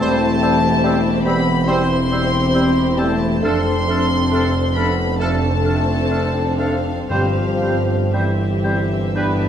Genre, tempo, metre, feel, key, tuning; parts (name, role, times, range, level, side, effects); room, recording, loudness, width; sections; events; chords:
classical, slow romantic movement for symphony orchestra; 57-73 BPM; 4/4; rubato; C major; A4 = 440 Hz
warm studio violin section; melody; 0.0-9.5 s; E5 to C6; -24 LUFS; left 2 dB
clear clarinet; second line; 0.0-9.3 s; C4 to D4; -31 LUFS; equal
clear oboe; second line; 0.0-9.3 s; A4 to C5; -31 LUFS; right 1 dB
dark studio violin section; second line; 0.0-9.5 s; G4 to D5; -27 LUFS; left 3 dB
hollow concert flute; second line; 0.0-9.3 s; E6 to G6; -33 LUFS; equal
dark studio viola section; accompaniment; 0.0-9.5 s; B3 to G4; -24 LUFS; equal
mellow bassoon; accompaniment; 0.0-9.3 s; G3 to A3; -28 LUFS; right 2 dB
mellow French horn section; sustained chords; 0.0-9.5 s; E3 to C4; -22 LUFS; left 4 dB
warm trombone section; sustained chords; 0.0-9.5 s; E3 to D4; -29 LUFS; right 3 dB
bright trumpet; stabs; 0.0-9.5 s; A4 to C5; -29 LUFS; right 2 dB
warm studio cello section; bass; 0.0-9.5 s; E2 to G2; -24 LUFS; right 1 dB
warm symphonic double bass section; bass; 0.0-9.5 s; E1 to G1; -25 LUFS; right 3 dB
warm tuba; bass; 0.0-9.5 s; E1 to G1; -27 LUFS; right 4 dB
timpani; percussion; 7.1-9.5 s; G2; -26 LUFS; left 1 dB
wet scoring stage reverb, RT60 1.6 s; dark, warm production; -15 LUFS; side -9 dB against mid
0.0-9.5 A section
timpani fill 9.2-9.5
0.0 C/E; 3.4 Dm7/F; 7.1 C/G